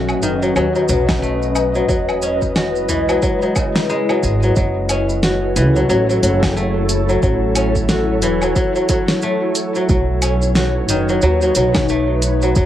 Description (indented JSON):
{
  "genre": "organic downtempo",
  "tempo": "90 BPM",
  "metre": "4/4",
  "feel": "swing 59% on 16ths",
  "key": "unclear",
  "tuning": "A4 = 440 Hz",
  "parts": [
    { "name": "ethereal airy pad", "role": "sustained chords", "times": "0.0-12.7 s", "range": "F#3 to D#5", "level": "-20 LUFS", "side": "left 1 dB", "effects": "ensemble chorus, built-in reverb, sidechain pumping, cassette tape" },
    { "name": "kora", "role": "arpeggios", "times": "0.0-12.7 s", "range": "C#3 to F#4", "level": "-19 LUFS", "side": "left 1 dB", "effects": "cassette tape, tape echo" },
    { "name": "upright bass", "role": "bass", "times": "0.0-12.7 s", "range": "E1 to D#2", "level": "-19 LUFS", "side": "equal", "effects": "sidechain pumping" },
    { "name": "deep house drum kit", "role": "drums", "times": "0.1-12.7 s", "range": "hi-hat, shaker, snare drum, woodblock", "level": "-22 LUFS", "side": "equal", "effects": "cassette tape" },
    { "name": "tabla", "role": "percussion", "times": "0.2-4.5 s", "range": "none", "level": "-30 LUFS", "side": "left 4 dB", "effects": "none" },
    { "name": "electronic kick drum", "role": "drums", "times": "1.1-12.7 s", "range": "none", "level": "-20 LUFS", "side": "equal", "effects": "cassette tape" }
  ],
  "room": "moderate small room reverb, RT60 0.5 s",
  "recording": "home recording on cassette",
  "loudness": "-14 LUFS",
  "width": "side -11 dB against mid",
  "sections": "0.0-4.6 A section; 4.6-12.7 B section",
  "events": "none",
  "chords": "0.0 Badd9; 1.9 Emaj7; 4.6 F#m7; 7.2 A6; 9.9 Badd9"
}